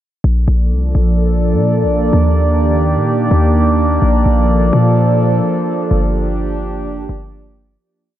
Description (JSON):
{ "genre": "hip hop, atmospheric cloud-rap", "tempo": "127 BPM", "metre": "4/4", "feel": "half-time", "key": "Bb major", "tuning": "A4 = 440 Hz", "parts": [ { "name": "warbly tape-like pad", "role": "sustained chords", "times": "0.6-7.8 s", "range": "Eb3 to D5", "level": "-15 LUFS", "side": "right 1 dB", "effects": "chorus, built-in reverb, phaser" }, { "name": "warm 808-style bass", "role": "bass", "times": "0.2-7.8 s", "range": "F1 to Bb2", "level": "-14 LUFS", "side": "equal", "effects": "none" } ], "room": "moderate plate reverb, RT60 3.2 s", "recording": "dreamy mix soaked in reverb", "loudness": "-12 LUFS", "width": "side -12 dB against mid", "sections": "0.2-7.8 breakdown", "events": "fade-out 5.9-7.8", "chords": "0.2 Bbmaj7; 2.1 Ebmaj7; 4.0 Bbmaj7; 5.9 Gm7", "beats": "| 0.24 0.71 1.19 1.66 | 2.13 2.60 3.08 3.55 | 4.02 4.49 4.97 5.44 | 5.91 6.38 6.86 7.33" }